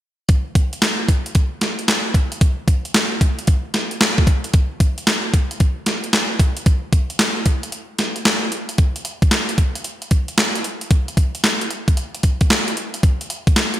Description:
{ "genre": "R&B", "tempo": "113 BPM", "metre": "4/4", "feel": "swing 66% on 16ths", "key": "none", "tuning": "none", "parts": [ { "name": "clean 12-bit digital drum machine", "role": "drums", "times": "0.3-13.8 s", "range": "handclaps, hi-hat, kick drum, snare drum", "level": "-16 LUFS", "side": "equal", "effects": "overdrive, gated reverb" } ], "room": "light reverb", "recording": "bright 1980s-style digital production", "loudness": "-16 LUFS", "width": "side -13 dB against mid", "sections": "0.3-8.8 A section; 8.8-13.8 B section", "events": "break 7.7-8.8", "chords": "none", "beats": "| 0.29 0.82 1.35 1.88 | 2.41 2.94 3.48 4.01 | 4.54 5.07 5.60 6.13 | 6.66 7.19 7.72 8.25 | 8.79 9.32 9.85 10.38 | 10.91 11.44 11.97 12.50 | 13.03 13.56" }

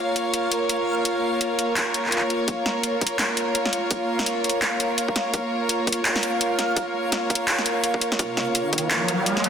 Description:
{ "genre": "half-time drum and bass", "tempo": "168 BPM", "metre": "4/4", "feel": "swing 59% on 16ths, half-time", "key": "Bb minor", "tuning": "A4 = 441 Hz", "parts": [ { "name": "warm chamber string section", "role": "sustained chords", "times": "0.0-9.5 s", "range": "Bb3 to Db5", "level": "-24 LUFS", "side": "right 1 dB", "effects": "sidechain pumping" }, { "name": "backwards swelling texture", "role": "texture", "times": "0.0-9.5 s", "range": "F5", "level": "-30 LUFS", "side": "equal", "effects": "built-in reverb" }, { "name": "drum and bass drum kit", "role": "drums", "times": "0.2-9.5 s", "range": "handclaps, hi-hat, snare drum", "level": "-24 LUFS", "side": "equal", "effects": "overdrive, high-pass filter on snare, high-pass filter on hats" }, { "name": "electronic kick drum", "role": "drums", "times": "2.5-8.8 s", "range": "none", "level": "-27 LUFS", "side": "equal", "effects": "overdrive, high-pass filter on kick" }, { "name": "riser", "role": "sound effects", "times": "8.3-9.5 s", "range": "none", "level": "-26 LUFS", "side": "right 1 dB", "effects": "none" } ], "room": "wet echo chamber reverb, RT60 2.0 s, digital ambience", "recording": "dense, heavily limited modern master", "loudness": "-21 LUFS", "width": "side -7 dB against mid", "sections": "0.0-2.5 A section; 2.5-9.5 B section", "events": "build-up 2.5-9.5; riser 8.3-9.5", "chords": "0.0 Bbm", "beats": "0.34 0.69 | 1.05 1.41 1.77 2.12 | 2.48 2.84 3.19 3.55 | 3.91 4.27 4.62 4.98 | 5.34 5.70 6.05 6.41 | 6.77 7.12 7.48 7.84 | 8.20 8.55 8.91 9.27" }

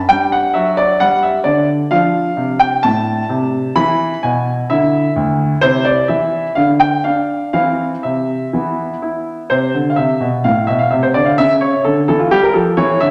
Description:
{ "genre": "classical-period piano sonatina", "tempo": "129 BPM", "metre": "4/4", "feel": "rubato", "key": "A minor", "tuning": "A4 = 439 Hz", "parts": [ { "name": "clear concert grand piano", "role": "solo", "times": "0.0-13.1 s", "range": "D2 to B5", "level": "-15 LUFS", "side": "equal", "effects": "none" } ], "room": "wet recital hall reverb, RT60 1.4 s", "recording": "none", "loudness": "-15 LUFS", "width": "mono", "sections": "0.0-9.5 A section; 9.5-13.1 B section", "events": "none", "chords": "0.1 G5; 1.9 Dm; 3.8 E; 4.7 Dsus2; 5.6 Cadd9; 6.5 N.C.; 7.5 Cadd11; 8.5 E5; 9.5 Am (rootless); 11.4 C#dim", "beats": "| 0.09 0.55 1.01 1.47 | 1.92 2.38 2.84 3.30 | 3.77 4.23 4.70 5.16 | 5.62 6.08 6.54 7.03 | 7.53 8.03 8.53 9.02 | 9.50 9.97 10.44 10.91 | 11.38 11.85 12.31 12.78" }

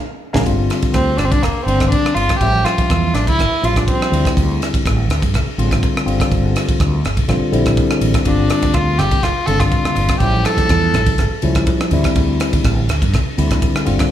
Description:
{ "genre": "electric jazz fusion", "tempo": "123 BPM", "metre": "4/4", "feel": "straight", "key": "unclear", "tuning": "A4 = 440 Hz", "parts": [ { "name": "tine electric piano", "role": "accompaniment", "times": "0.3-14.1 s", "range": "D3 to Bb5", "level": "-20 LUFS", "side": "left 3 dB", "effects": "phaser" }, { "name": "mellow fretless electric bass", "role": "bass", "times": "0.3-14.0 s", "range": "F1 to G2", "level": "-18 LUFS", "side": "right 1 dB", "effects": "none" }, { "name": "crisp fusion drum kit", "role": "drums", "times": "0.3-14.1 s", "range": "kick drum, ride cymbal, rim click, snare drum", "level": "-18 LUFS", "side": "equal", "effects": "none" }, { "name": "congas", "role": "percussion", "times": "0.3-0.4, 8.6-14.0 s", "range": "none", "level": "-26 LUFS", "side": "right 3 dB", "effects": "none" }, { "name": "warm violin", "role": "melody", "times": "0.9-4.2, 8.3-11.2 s", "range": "Bb3 to A4", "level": "-18 LUFS", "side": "equal", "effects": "none" } ], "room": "light reverb, small room ambience", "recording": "studio reverb", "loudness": "-13 LUFS", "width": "side -11 dB against mid", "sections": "0.5-14.1 A section", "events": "drum fill 0.0-0.5; band accent 0.0-0.5", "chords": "0.5 G5; 2.4 A7b13; 4.1 Dm9; 6.1 G5; 7.3 Bb69; 8.3 G5; 10.2 A7b13; 11.9 Dsus2", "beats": "| 0.46 0.94 1.43 1.92 | 2.41 2.89 3.38 3.87 | 4.36 4.85 5.33 5.82 | 6.31 6.80 7.29 7.78 | 8.26 8.75 9.24 9.72 | 10.21 10.70 11.19 11.67 | 12.16 12.65 13.13 13.62 | 14.11" }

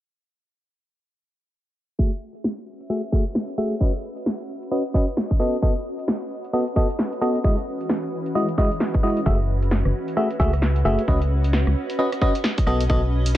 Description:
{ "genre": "UK garage, two-step garage", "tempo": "132 BPM", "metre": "4/4", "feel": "swing 61% on 16ths", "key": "F# dorian", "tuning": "A4 = 440 Hz", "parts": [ { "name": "FM electric piano", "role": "stabs", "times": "2.0-13.0 s", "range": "G#3 to E5", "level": "-24 LUFS", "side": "equal", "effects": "chorus, low-pass filter, digital delay" }, { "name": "electronic kick drum", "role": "drums", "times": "2.0-13.0 s", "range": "none", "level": "-21 LUFS", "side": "equal", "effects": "none" }, { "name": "granular cloud pad", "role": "texture", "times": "2.7-13.4 s", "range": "E3 to E5", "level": "-31 LUFS", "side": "equal", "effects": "built-in reverb, sidechain pumping" }, { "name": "punchy analog drum machine", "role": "drums", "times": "2.4-13.4 s", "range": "hi-hat, rim click, snare drum", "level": "-25 LUFS", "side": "equal", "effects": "overdrive, low-pass filter on hats, low-pass filter on snare" }, { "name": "organ-like FM bass", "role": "bass", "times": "9.3-13.4 s", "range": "F#1 to C#2", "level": "-20 LUFS", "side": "equal", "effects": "none" } ], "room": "light reverb", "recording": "low-pass filter", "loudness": "-20 LUFS", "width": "side -14 dB against mid", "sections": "2.0-13.4 A section", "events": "filter sweep on drum 2.0-13.4; filter sweep on FM electric piano 2.0-13.4; filter sweep 2.0-13.4", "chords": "2.0 F#m9; 3.8 C#9sus4; 5.4 B7; 7.4 Emaj9; 9.3 F#m9; 11.1 C#9sus4; 12.7 B7", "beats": "| 1.99 2.44 2.90 3.35 | 3.81 4.26 4.71 5.17 | 5.62 6.08 6.53 6.99 | 7.44 7.90 8.35 8.81 | 9.26 9.71 10.17 10.62 | 11.08 11.53 11.99 12.44 | 12.90 13.35" }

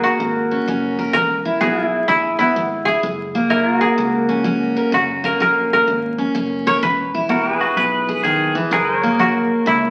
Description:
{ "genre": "country", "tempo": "127 BPM", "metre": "4/4", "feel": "swing 65% on 8ths", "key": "unclear", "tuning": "A4 = 439 Hz", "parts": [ { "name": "koto", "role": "melody", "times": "0.0-9.9 s", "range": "D#4 to C#5", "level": "-21 LUFS", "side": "equal", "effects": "none" }, { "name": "picked steel-string acoustic guitar", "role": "accompaniment", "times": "0.0-9.9 s", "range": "F#2 to A#4", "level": "-22 LUFS", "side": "equal", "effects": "none" }, { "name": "pedal steel guitar", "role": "sustained chords", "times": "0.0-9.9 s", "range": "E4 to C#5", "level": "-25 LUFS", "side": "equal", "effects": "none" }, { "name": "fingered electric bass", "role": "bass", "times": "0.0-9.9 s", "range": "E1 to C#2", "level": "-34 LUFS", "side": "equal", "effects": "none" }, { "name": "twangy electric guitar", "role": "second line", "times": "7.6-8.5 s", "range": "F#4 to B4", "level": "-21 LUFS", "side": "equal", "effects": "warbly pitch drift" } ], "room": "wet large studio reverb, RT60 1.3 s", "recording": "very old 78 rpm record, vinyl crackle", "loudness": "-18 LUFS", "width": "mono", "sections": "0.0-9.9 A section", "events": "none", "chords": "0.0 F#; 1.1 E; 3.0 F#; 6.8 E; 8.7 F#", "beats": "0.19 0.67 | 1.14 1.61 2.08 2.56 | 3.03 3.50 3.98 4.45 | 4.93 5.40 5.87 6.35 | 6.82 7.29 7.77 8.24 | 8.71 9.19 9.66" }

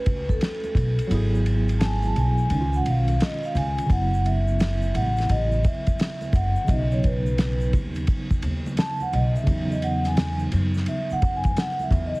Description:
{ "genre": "hip hop, jazz-hop", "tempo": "86 BPM", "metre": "4/4", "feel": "swing 65% on 16ths", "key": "E major", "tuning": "A4 = 440 Hz", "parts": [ { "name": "vibraphone with soft mallets", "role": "melody", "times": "0.0-12.2 s", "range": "A4 to A5", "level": "-28 LUFS", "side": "equal", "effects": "auto-pan" }, { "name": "mellow tine electric piano", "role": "accompaniment", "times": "0.0-12.2 s", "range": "C#3 to B4", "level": "-28 LUFS", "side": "right 1 dB", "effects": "medium tremolo" }, { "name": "upright bass", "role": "bass", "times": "0.1-12.1 s", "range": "F#1 to F#2", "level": "-24 LUFS", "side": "equal", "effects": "none" }, { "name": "cloth-damped thuddy drum kit", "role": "drums", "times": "0.1-12.1 s", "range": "hi-hat, kick drum, ride cymbal, snare drum", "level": "-26 LUFS", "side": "equal", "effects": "none" }, { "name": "egg shaker and congas", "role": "percussion", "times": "0.1-12.2 s", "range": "none", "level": "-38 LUFS", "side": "left 1 dB", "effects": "none" } ], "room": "studio reverb", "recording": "heavily compressed radio sound, multiband compression, vinyl crackle", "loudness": "-20 LUFS", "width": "side -23 dB against mid", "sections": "0.0-12.2 A section", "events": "vibraphone solo 0.0-12.2; kick muted 1.1-3.9", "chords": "0.0 A; 1.1 F#m11/G#; 2.5 C#7; 3.9 F#m7; 6.7 B; 9.5 E5", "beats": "0.41 | 1.11 1.80 2.50 3.20 | 3.90 4.59 5.29 5.99 | 6.69 7.38 8.08 8.78 | 9.48 10.18 10.87 11.57" }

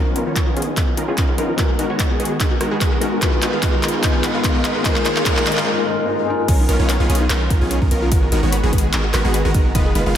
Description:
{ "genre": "future bass", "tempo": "147 BPM", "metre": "4/4", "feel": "swing 54% on 16ths, half-time", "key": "unclear", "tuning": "A4 = 439 Hz", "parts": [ { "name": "felt-muted upright piano", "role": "accompaniment", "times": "0.0-6.5 s", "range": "E#3 to Cb5", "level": "-24 LUFS", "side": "left 3 dB", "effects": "vintage 12-bit sampler grit, sidechain pumping, ping-pong delay" }, { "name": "supersaw stab", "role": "riff", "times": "0.0-10.2 s", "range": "D#3 to F5", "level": "-22 LUFS", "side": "equal", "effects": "sidechain pumping, low-pass filter, ping-pong delay" }, { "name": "long sustained 808-style bass", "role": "bass", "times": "0.0-10.2 s", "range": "Eb1 to Ab2", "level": "-22 LUFS", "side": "equal", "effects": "sidechain pumping, high-pass filter" }, { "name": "riser", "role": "sound effects", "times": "2.6-5.7 s", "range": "none", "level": "-33 LUFS", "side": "equal", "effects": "none" }, { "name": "wide unison pluck", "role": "arpeggios", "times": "0.1-10.1 s", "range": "C#4 to Eb5", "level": "-28 LUFS", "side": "left 1 dB", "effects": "cassette tape, sidechain pumping, ping-pong delay" }, { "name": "trap drum kit", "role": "drums", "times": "0.2-10.0 s", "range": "crash cymbal, handclaps, hi-hat, rim click", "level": "-24 LUFS", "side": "equal", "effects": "high-pass filter on snare, high-pass filter on hats, high-pass filter on cymbals" }, { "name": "electronic kick drum", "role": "drums", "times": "0.4-9.8 s", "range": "none", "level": "-19 LUFS", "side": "right 1 dB", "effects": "none" } ], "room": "wet lush hall reverb, RT60 1.8 s", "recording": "dreamy mix soaked in reverb", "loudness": "-15 LUFS", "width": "side -10 dB against mid", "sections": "0.0-6.5 A section; 6.5-10.2 B section", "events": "build-up 0.0-6.5; drum fill 0.0-5.7; filter sweep on supersaw synth 0.0-6.5; break 5.7-6.5; drop 6.5-10.2", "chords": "0.0 Bmaj9#11; 1.6 Abm9; 3.2 Fm7b5; 4.9 Eb5; 6.5 Bmaj9#11; 8.1 Abm9", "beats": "0.36 0.77 1.18 | 1.59 1.99 2.40 2.81 | 3.22 3.63 4.04 4.44 | 4.85 5.26 5.67 6.08 | 6.48 6.89 7.30 7.71 | 8.12 8.53 8.93 9.34 | 9.75 10.16" }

